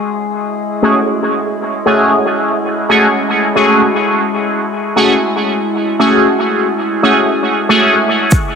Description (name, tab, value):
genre	dub techno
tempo	116 BPM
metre	4/4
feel	swing 56% on 16ths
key	F# minor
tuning	A4 = 440 Hz
part	drifting glass-harmonics texture	texture	0.0-8.6 s	G#3 to G#4	-19 LUFS	left 1 dB	chorus, built-in reverb, sidechain pumping
part	resonant sweep polysynth	stabs	0.8-8.0 s	A3 to G#4	-11 LUFS	equal	chorus, phaser, sidechain pumping, dub echo
part	electronic kick drum	drums	8.3-8.4 s	none	-11 LUFS	equal	overdrive
part	egg shaker	percussion	8.3-8.4 s	none	-22 LUFS	right 1 dB	none
room	wet lush hall reverb, RT60 1.6 s, digital ambience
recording	none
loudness	-11 LUFS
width	side -6 dB against mid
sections	0.0-8.3 A section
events	none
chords	0.0 F#madd9